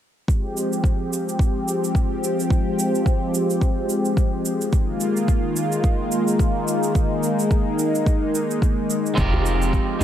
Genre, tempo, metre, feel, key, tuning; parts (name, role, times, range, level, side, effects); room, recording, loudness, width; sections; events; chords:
organic downtempo; 108 BPM; 4/4; swing 57% on 16ths; F minor; A4 = 440 Hz
warm analog pad; sustained chords; 0.3-10.0 s; Eb3 to G4; -22 LUFS; left 1 dB; chorus, sidechain pumping
cabasa; drums; 0.3-10.0 s; -32 LUFS; right 5 dB
electronic kick drum; drums; 0.3-9.9 s; -20 LUFS; equal
electric guitar at the edge of break-up; accompaniment; 9.2-10.0 s; Ab3 to G4; -23 LUFS; right 2 dB; vintage 12-bit sampler grit, sidechain pumping, digital delay
woody FM bass; bass; 9.2-10.0 s; F1; -21 LUFS; equal; sidechain pumping
djembe; percussion; 9.3-9.6 s; -27 LUFS; right 1 dB
light reverb, digital ambience; -19 LUFS; side -10 dB against mid
0.3-10.0 A section
0.3 Fmadd9; 4.7 Ebsus24; 9.2 Fm9